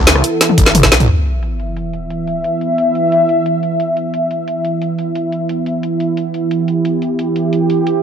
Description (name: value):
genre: dark technical drum and bass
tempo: 177 BPM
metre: 4/4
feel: straight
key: E minor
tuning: A4 = 445 Hz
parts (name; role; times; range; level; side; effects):
- sweeping resonant pad; sustained chords; 0.0-8.0 s; E3 to E5; -15 LUFS; right 1 dB; chorus, sidechain pumping
- phased detuned saw bass; bass; 0.0-1.1 s; G1 to D2; -15 LUFS; equal; phaser, tube saturation, sidechain pumping
- drum and bass drum kit; drums; 0.1-7.9 s; hi-hat, rim click, snare drum, toms; -12 LUFS; left 1 dB; overdrive, low-pass filter on hats, low-pass filter on snare, low-pass filter on toms
- electronic kick drum; drums; 0.6-0.9 s; none; -14 LUFS; equal; overdrive
- sub drop; sound effects; 1.1-2.4 s; none; -19 LUFS; equal; none
room: light reverb, digital ambience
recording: none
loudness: -13 LUFS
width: side -8 dB against mid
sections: 0.0-1.1 A section; 1.1-8.0 B section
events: drop 0.0-1.1; drum fill 0.4-1.1; impact 1.1-2.4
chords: 0.0 E5